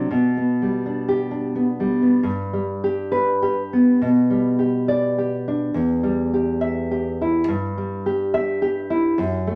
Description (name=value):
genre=romantic piece for solo classical guitar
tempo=80-109 BPM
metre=3/4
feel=rubato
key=G major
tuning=A4 = 441 Hz
part: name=nylon-string guitar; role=solo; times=0.0-9.6 s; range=E2 to E5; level=-21 LUFS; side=equal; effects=none
room=wet studio reverb, RT60 0.7 s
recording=none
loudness=-21 LUFS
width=mono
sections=0.0-2.2 A section; 2.2-9.6 A section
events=none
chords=0.1 G/B; 2.2 G; 4.0 G/B; 5.8 Em; 7.5 Em/G